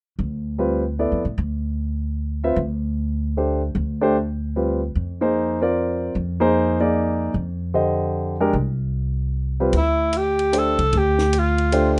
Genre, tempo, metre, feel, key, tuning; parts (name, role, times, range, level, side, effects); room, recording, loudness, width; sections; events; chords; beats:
modal jazz; 151 BPM; 3/4; swing 64% on 8ths; A4 = 440 Hz
upright bass; bass; 0.2-12.0 s; C2 to A2; -26 LUFS; equal
warm grand piano; accompaniment; 0.6-12.0 s; D3 to E5; -22 LUFS; equal
compact cocktail drum kit; drums; 9.7-12.0 s; hi-hat, ride cymbal, snare drum; -35 LUFS; equal
breathy alto saxophone; melody; 9.8-12.0 s; E4 to A4; -22 LUFS; equal
light reverb; rough home demo mix, nothing above 10.4 kHz; -22 LUFS; mono
0.2-9.7 A section; 9.7-12.0 B section
0.2 Dm7; 5.0 Fm9; 9.7 Dm7
| 0.19 0.59 0.98 | 1.38 1.78 2.18 | 2.58 2.97 3.37 | 3.77 4.17 4.57 | 4.96 5.36 5.76 | 6.16 6.55 6.95 | 7.35 7.75 8.15 | 8.54 8.94 9.34 | 9.74 10.14 10.54 | 10.93 11.33 11.73